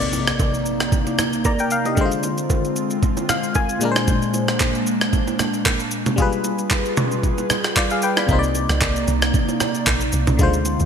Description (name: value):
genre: amapiano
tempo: 114 BPM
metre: 4/4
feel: swing 55% on 16ths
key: C minor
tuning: A4 = 440 Hz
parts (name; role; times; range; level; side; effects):
- barking FM electric piano; accompaniment; 0.0-10.9 s; Bb2 to B5; -23 LUFS; left 4 dB; chorus, tremolo
- airy breathy pad; sustained chords; 0.0-10.9 s; C3 to D5; -24 LUFS; right 2 dB; chorus
- jungle sampler-style drum kit; drums; 0.0-10.9 s; handclaps, kick drum, rim click, shaker, toms; -21 LUFS; right 1 dB; overdrive, gated reverb
- impact; sound effects; 0.0-2.0 s; none; -33 LUFS; right 1 dB; none
- bongos and congas; percussion; 0.1-10.8 s; none; -30 LUFS; right 10 dB; none
- deep log drum bass; bass; 8.3-10.9 s; Bb1 to D2; -21 LUFS; right 1 dB; none
room: light reverb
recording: bright 1980s-style digital production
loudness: -17 LUFS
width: side -7 dB against mid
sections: 0.0-10.9 A section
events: impact 0.0-2.0; FM electric piano fill 3.0-4.1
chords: 0.0 Cm9; 2.0 Dm7b5; 3.8 Bb9; 6.2 G7b9; 8.3 Cm9